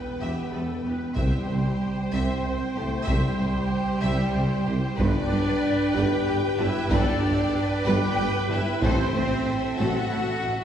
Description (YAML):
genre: cinematic, epic orchestral film score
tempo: 63 BPM (dotted quarters)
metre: 6/8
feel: straight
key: unclear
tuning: A4 = 440 Hz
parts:
  - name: rich symphonic violin section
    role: melody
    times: 0.0-10.6 s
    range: G4 to G5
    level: -36 LUFS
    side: left 3 dB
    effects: none
  - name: rich studio violin section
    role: second line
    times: 0.0-10.6 s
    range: C4 to G5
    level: -34 LUFS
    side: equal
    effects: none
  - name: rich symphonic viola section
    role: accompaniment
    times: 0.0-10.6 s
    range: G4 to C5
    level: -33 LUFS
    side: right 1 dB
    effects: none
  - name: dark French horn section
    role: sustained chords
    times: 0.0-10.6 s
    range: G3 to G4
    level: -27 LUFS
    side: equal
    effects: none
  - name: mellow tuba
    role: bass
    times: 0.2-10.6 s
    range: E1 to C2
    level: -31 LUFS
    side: right 2 dB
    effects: none
  - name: rich studio cello section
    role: bass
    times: 0.2-10.5 s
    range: C2 to A2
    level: -32 LUFS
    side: right 1 dB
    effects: none
  - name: rich symphonic double bass section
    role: bass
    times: 0.2-10.5 s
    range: E1 to C2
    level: -31 LUFS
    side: right 1 dB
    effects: none
  - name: solo taiko drums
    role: drums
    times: 1.2-9.4 s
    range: none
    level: -30 LUFS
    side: equal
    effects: none
room: wet concert hall reverb, RT60 2.3 s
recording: recorded in a church or concert hall, studio reverb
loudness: -22 LUFS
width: side -9 dB against mid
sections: 0.0-10.6 A section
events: none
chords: 0.0 Em; 1.2 C; 5.0 G; 8.8 Am